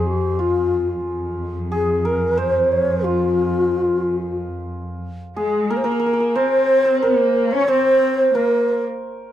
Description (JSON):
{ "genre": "Persian modal ensemble", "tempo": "91 BPM", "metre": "3/4", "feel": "straight", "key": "F dastgah shur", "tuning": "A4 = 444 Hz", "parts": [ { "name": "breathy mellow low ney", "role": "melody", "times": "0.0-8.8 s", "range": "F4 to Db5", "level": "-18 LUFS", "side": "left 1 dB", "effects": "none" }, { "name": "santur", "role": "second line", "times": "0.0-9.3 s", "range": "F4 to Db5", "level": "-23 LUFS", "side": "right 3 dB", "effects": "none" }, { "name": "rich studio cello section", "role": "drone", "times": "0.0-5.1 s", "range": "F2", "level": "-25 LUFS", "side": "equal", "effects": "stereo widening" }, { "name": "warm cello", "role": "second line", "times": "5.4-8.8 s", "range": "Ab3 to Db4", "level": "-23 LUFS", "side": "left 4 dB", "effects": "none" } ], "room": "light reverb", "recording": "dry, close 1970s-style studio recording, faint mains hum", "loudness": "-16 LUFS", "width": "side -11 dB against mid", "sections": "0.0-5.0 A section; 5.0-9.3 B section", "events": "none", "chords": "none" }